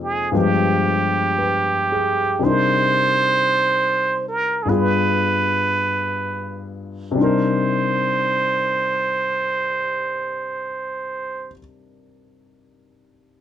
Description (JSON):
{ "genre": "jazz", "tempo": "44-60 BPM", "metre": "4/4", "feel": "swing 68% on 8ths", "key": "C harmonic minor", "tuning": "A4 = 442 Hz", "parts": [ { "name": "trumpet with plunger mute", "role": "melody", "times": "0.0-11.5 s", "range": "G4 to C5", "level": "-19 LUFS", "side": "right 3 dB", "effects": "none" }, { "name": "warm grand piano", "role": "accompaniment", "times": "0.0-13.4 s", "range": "F2 to G5", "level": "-21 LUFS", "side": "left 3 dB", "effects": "none" } ], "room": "light reverb", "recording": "close, detailed microphones", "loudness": "-17 LUFS", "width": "side -10 dB against mid", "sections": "0.0-7.2 A section; 7.2-12.5 B section", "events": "slowing down 0.0-7.2", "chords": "0.3 G7b9; 2.4 Cm9; 4.6 G7b9; 7.2 Cm9", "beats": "0.32 1.34 | 2.40 3.49 4.64 5.86 | 7.16 8.51 9.84 11.18" }